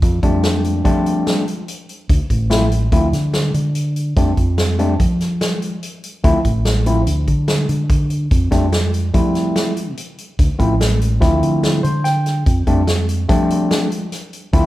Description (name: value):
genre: progressive instrumental, band music in an uneven meter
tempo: 145 BPM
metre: 5/4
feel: straight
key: unclear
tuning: A4 = 441 Hz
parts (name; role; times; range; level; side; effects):
- fingered electric bass; bass; 0.0-14.6 s; A1 to F3; -18 LUFS; equal; none
- swinging big-band drum kit; drums; 0.0-14.6 s; hi-hat, kick drum, snare drum; -19 LUFS; equal; none
- overdriven tine electric piano; accompaniment; 0.2-14.7 s; F3 to G5; -19 LUFS; left 1 dB; none
room: moderate large studio reverb, RT60 1.4 s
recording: band playing live in one room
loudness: -14 LUFS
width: side -16 dB against mid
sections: 0.0-14.7 A section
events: tine electric piano fill 11.6-12.5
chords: 0.0 F69; 2.1 Dm7; 4.2 F69; 6.2 Dm7; 8.3 Fadd9; 10.4 Dm7; 12.5 F69